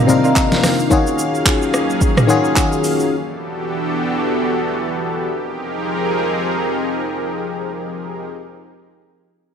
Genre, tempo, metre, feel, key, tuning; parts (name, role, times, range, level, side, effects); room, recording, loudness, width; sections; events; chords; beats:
amapiano; 109 BPM; 4/4; swing 58% on 16ths; A4 = 442 Hz
barking FM electric piano; accompaniment; 0.0-3.1 s; C3 to D5; -16 LUFS; left 4 dB; chorus
warm analog pad; sustained chords; 0.0-8.3 s; C3 to F5; -20 LUFS; right 1 dB; chorus, sidechain pumping
deep house drum kit; drums; 0.1-3.1 s; handclaps, hi-hat, kick drum, rim click, shaker, snare drum, toms; -17 LUFS; right 1 dB; overdrive
congas; percussion; 0.1-0.8 s; -29 LUFS; right 1 dB
moderate plate reverb, RT60 1.8 s, digital ambience; bright 1980s-style digital production; -16 LUFS; side -7 dB against mid
0.0-5.3 A section; 5.3-7.5 B section
drop 0.0-5.3
0.0 Cm11; 0.9 Ebm11; 3.1 Em11; 5.3 Fm11
0.36 | 0.91 1.46 2.01 2.56 | 3.11 3.66 4.21 4.76 | 5.31 5.86 6.42 6.96